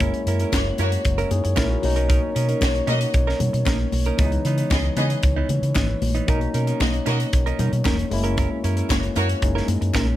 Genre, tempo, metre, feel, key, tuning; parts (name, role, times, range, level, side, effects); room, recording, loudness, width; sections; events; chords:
disco; 115 BPM; 4/4; straight; B major; A4 = 440 Hz
barky tine electric piano; accompaniment; 0.0-10.2 s; E3 to A#4; -29 LUFS; left 4 dB
direct-recorded clean electric guitar; accompaniment; 0.0-10.2 s; E3 to A#4; -30 LUFS; right 8 dB
mellow French horn section; sustained chords; 0.0-10.2 s; B2 to C#5; -29 LUFS; left 1 dB
fingered electric bass; bass; 0.0-10.1 s; E1 to C#3; -23 LUFS; equal
tight funk drum kit; drums; 0.0-10.1 s; hi-hat, kick drum, snare drum; -24 LUFS; equal
congas; percussion; 0.0-10.1 s; -31 LUFS; left 4 dB
clear studio string section; second line; 0.5-9.4 s; A#3 to D#5; -28 LUFS; left 1 dB
group handclap; percussion; 0.5-10.1 s; -35 LUFS; left 5 dB
little or no reverb; -19 LUFS; side -14 dB against mid
0.0-10.2 A section
0.0 F#7; 1.8 Bmaj9; 4.2 C#m9; 6.3 Bmaj9; 8.1 F#7